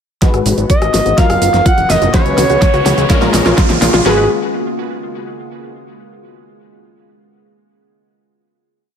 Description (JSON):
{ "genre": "progressive house", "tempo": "125 BPM", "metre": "4/4", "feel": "straight", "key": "G# dorian", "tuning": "A4 = 441 Hz", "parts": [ { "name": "evolving wavetable pad", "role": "sustained chords", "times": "0.5-4.3 s", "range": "C#3 to G#3", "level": "-23 LUFS", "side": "left 1 dB", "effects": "chorus, built-in reverb, sidechain pumping" }, { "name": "wide unison pluck", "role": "arpeggios", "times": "0.2-4.3 s", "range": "E#4 to F#4", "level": "-20 LUFS", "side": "equal", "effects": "sidechain pumping, ping-pong delay" }, { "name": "supersaw stab", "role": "stabs", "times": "0.2-4.2 s", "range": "G#2 to B4", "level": "-20 LUFS", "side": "left 3 dB", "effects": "cassette tape, sidechain pumping, low-pass filter, ping-pong delay" }, { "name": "pop drum kit", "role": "drums", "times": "0.2-4.2 s", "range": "kick drum, snare drum", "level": "-13 LUFS", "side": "equal", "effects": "overdrive" }, { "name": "pop drum kit", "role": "drums", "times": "0.2-4.0 s", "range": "hi-hat, rim click, shaker, snare drum", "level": "-18 LUFS", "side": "right 1 dB", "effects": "overdrive, sidechain pumping on hats, sidechain pumping on perc" }, { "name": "riser", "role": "sound effects", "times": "1.7-4.1 s", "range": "none", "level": "-26 LUFS", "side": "right 2 dB", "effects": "none" }, { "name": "fat analog bass", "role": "bass", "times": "0.3-4.3 s", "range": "F#1 to C#2", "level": "-18 LUFS", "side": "equal", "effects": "sidechain pumping" }, { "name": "congas", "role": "percussion", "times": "0.5-3.8 s", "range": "none", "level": "-27 LUFS", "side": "left 2 dB", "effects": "none" }, { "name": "expressive portamento lead", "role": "melody", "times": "0.7-4.3 s", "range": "G#4 to F#5", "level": "-17 LUFS", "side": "equal", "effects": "chorus, ping-pong delay" }, { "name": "soft synth bell", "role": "second line", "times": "0.7-4.3 s", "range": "G#4 to F#5", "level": "-23 LUFS", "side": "right 2 dB", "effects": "none" } ], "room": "light reverb", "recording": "none", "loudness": "-10 LUFS", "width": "side -8 dB against mid", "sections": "0.2-4.1 build; 4.1-6.0 final chord", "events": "build-up 0.2-4.1; drum fill 0.2-4.1; filter sweep on synth pluck 0.2-4.1; filter sweep on supersaw synth 0.2-4.1; riser 1.7-4.1", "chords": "0.2 G#m7; 1.2 F#maj7; 2.1 C#7sus4; 3.1 A#m7; 4.1 G#m7", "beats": "| 0.22 0.70 1.18 1.66 | 2.14 2.62 3.10 3.58 | 4.06" }